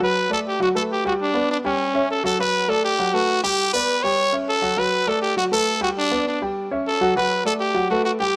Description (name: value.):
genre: latin.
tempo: 201 BPM.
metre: 4/4.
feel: straight.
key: D major.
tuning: A4 = 440 Hz.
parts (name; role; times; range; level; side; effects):
growling trumpet; melody; 0.0-8.4 s; C#4 to C#5; -23 LUFS; equal; none.
dark grand piano; accompaniment; 0.0-8.4 s; F#3 to G5; -26 LUFS; equal; none.
room: light reverb.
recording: none.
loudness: -21 LUFS.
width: mono.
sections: 0.0-8.4 A section.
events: none.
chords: 0.0 D; 0.6 B5; 1.2 G; 1.8 F#m7; 2.4 D; 3.0 B5; 3.6 G; 4.2 A7; 4.8 D; 5.4 B5; 6.0 G; 6.6 A7; 7.2 D; 7.8 B5.